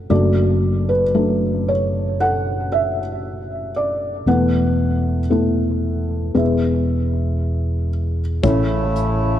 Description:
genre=acoustic folk-pop ballad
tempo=58 BPM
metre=4/4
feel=straight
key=unclear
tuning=A4 = 440 Hz
part: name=felt-muted upright piano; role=melody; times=0.0-9.4 s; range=F#1 to F#5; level=-19 LUFS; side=left 1 dB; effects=tape echo
part: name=fingered electric bass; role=bass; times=0.0-9.4 s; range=E1 to A1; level=-22 LUFS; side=right 1 dB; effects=none
part: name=pedal harmonium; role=sustained chords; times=8.4-9.4 s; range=C#3 to E4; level=-23 LUFS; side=right 1 dB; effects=none
part: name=soft brush drum kit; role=drums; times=8.4-9.2 s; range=hi-hat, kick drum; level=-25 LUFS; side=left 1 dB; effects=none
room=moderate echo chamber reverb, RT60 2.3 s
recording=1960s-style stereo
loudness=-17 LUFS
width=side -11 dB against mid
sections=0.0-8.4 A section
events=none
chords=0.1 D/F#; 4.3 Esus4; 8.4 A

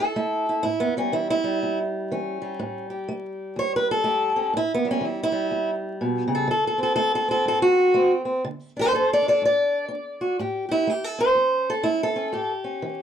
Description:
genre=acoustic country blues, solo or duo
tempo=123 BPM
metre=4/4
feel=swing 62% on 8ths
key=A mixolydian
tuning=A4 = 435 Hz
part: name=fingerpicked steel-string acoustic guitar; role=solo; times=0.0-13.0 s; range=E2 to D5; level=-21 LUFS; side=equal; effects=none
room=moderate small room reverb, RT60 0.5 s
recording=dark, warm production, vinyl crackle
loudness=-21 LUFS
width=side -9 dB against mid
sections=0.0-13.0 A section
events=steel-string acoustic guitar solo 0.0-13.0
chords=0.0 A7; 6.5 D7; 10.4 A7

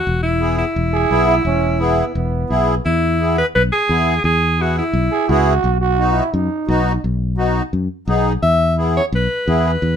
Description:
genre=latin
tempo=172 BPM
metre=4/4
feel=straight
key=E major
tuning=A4 = 439 Hz
part: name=edgy alto saxophone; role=melody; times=0.0-5.4, 8.4-10.0 s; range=E4 to E5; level=-18 LUFS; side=equal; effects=none
part: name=fingered electric bass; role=bass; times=0.1-10.0 s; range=E1 to F#2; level=-18 LUFS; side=left 1 dB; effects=none
part: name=accordion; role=accompaniment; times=0.4-9.7 s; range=B3 to G#4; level=-19 LUFS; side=left 1 dB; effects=light tremolo tuning
part: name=growling trombone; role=second line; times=0.9-2.8, 5.1-7.0 s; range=B3 to G#4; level=-20 LUFS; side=right 7 dB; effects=none
room=light reverb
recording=minimal, uncompressed stereo recording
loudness=-15 LUFS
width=side -8 dB against mid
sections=0.0-2.9 A section; 2.9-10.0 B section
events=none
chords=0.1 E; 5.6 B; 8.4 E

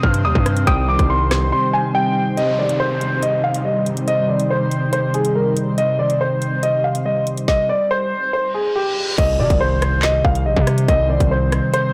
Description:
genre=hip hop, drill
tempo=141 BPM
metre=4/4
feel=half-time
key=C minor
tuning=A4 = 440 Hz
part: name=dark baby grand piano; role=melody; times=0.0-11.9 s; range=G4 to F6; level=-21 LUFS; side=equal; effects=low-pass filter, tape echo
part: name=hollow square pluck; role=second line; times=0.0-1.5 s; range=Eb5 to G5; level=-32 LUFS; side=equal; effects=chorus, tape echo
part: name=mellow tine electric piano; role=accompaniment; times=0.0-11.9 s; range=C3 to G3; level=-24 LUFS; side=equal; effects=phaser, low-pass filter
part: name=granular cloud pad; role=sustained chords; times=0.0-11.9 s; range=G3 to C5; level=-30 LUFS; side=equal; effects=built-in reverb
part: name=distorted 808-style bass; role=bass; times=0.0-1.5, 9.2-11.6 s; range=Bb1 to C3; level=-21 LUFS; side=equal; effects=distortion
part: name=drill drum kit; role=drums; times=0.0-11.8 s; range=crash cymbal, handclaps, hi-hat, kick drum, rim click, snare drum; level=-23 LUFS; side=equal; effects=soft clipping on snare
part: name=downlifter, reverse cymbal and impact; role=sound effects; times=2.4-5.8, 8.5-10.9 s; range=none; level=-32 LUFS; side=equal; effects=none
room=light reverb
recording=blown-out, overdriven recording, overdrive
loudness=-18 LUFS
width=mono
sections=0.0-2.4 A section; 2.4-9.2 B section; 9.2-11.9 C section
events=drums muted 1.5-2.4; reverse cymbal 8.5-9.2; impact 9.2-10.9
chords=0.0 Cm

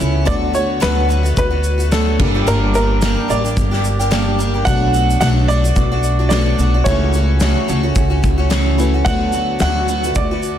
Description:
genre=acoustic pop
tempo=109 BPM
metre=4/4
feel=swing 55% on 16ths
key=D major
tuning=A4 = 439 Hz
part: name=felt-muted upright piano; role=accompaniment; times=0.0-10.6 s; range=B3 to E5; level=-27 LUFS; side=left 5 dB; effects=none
part: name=picked twelve-string acoustic guitar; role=accompaniment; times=0.0-10.6 s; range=G2 to G4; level=-20 LUFS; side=equal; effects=none
part: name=upright bass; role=bass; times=0.0-10.6 s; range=G1 to D2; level=-17 LUFS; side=equal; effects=none
part: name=loose indie drum kit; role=drums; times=0.0-10.6 s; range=crash cymbal, kick drum, shaker, snare drum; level=-21 LUFS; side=equal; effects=none
part: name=clear upright piano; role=melody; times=0.3-10.6 s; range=A4 to F#5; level=-21 LUFS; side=right 2 dB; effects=ping-pong delay
room=light reverb, small room ambience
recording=dense, heavily limited modern master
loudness=-13 LUFS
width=side -10 dB against mid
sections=0.3-10.6 A section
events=none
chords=0.3 D6; 2.2 Gm; 4.7 Bm7; 6.9 A6/C#; 9.1 D6

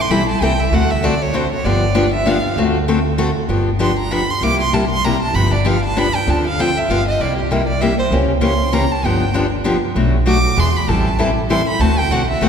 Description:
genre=acoustic string swing (jazz manouche)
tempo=195 BPM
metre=3/4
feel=swing 58% on 8ths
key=G mixolydian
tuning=A4 = 440 Hz
part: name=warm violin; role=melody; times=0.0-12.5 s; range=G4 to D6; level=-20 LUFS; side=right 2 dB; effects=none
part: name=upright bass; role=bass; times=0.0-12.5 s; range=G1 to E2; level=-19 LUFS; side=equal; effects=none
part: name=picked steel-string acoustic guitar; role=accompaniment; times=0.1-12.5 s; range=B2 to A4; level=-17 LUFS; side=left 2 dB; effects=none
room=wet church reverb, RT60 3.7 s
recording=recorded in a church or concert hall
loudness=-14 LUFS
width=side -7 dB against mid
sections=0.0-3.5 A section; 3.5-12.5 A section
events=violin solo 0.0-12.5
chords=0.0 Am7; 0.7 D7; 1.6 G7; 2.6 D7; 3.5 G7; 4.4 C7; 5.3 G7; 6.3 Dm7; 6.9 G7; 7.2 C7; 8.1 C#dim7; 9.0 G7; 10.0 Bm7; 10.6 E7; 10.9 Am7; 11.8 D7

